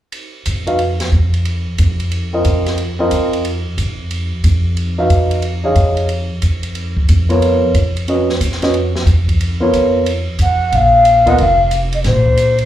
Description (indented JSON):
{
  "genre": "modal jazz",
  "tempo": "181 BPM",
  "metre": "4/4",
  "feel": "swing 64% on 8ths",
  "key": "Bb phrygian",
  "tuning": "A4 = 436 Hz",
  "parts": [
    { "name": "open jazz drum kit", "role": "drums", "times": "0.1-12.6 s", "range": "hi-hat, kick drum, ride cymbal, snare drum", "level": "-24 LUFS", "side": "right 1 dB", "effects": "none" },
    { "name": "upright bass", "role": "bass", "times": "0.5-12.7 s", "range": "F1 to F2", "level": "-15 LUFS", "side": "equal", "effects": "none" },
    { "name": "warm grand piano", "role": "accompaniment", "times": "0.7-11.4 s", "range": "Cb4 to F5", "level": "-16 LUFS", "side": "right 1 dB", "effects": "slapback echo" },
    { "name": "breathy mellow jazz flute", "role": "melody", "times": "10.4-12.7 s", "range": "C5 to Gb5", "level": "-11 LUFS", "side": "left 1 dB", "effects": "slapback echo" }
  ],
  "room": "small room ambience",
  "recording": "live gig heard through the venue's PA, club reverb",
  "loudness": "-12 LUFS",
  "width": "side -12 dB against mid",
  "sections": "0.1-10.7 A section; 10.7-12.7 B section",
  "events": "none",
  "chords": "0.1 Bbsus24; 5.4 Db7sus2; 10.7 Bbsus2"
}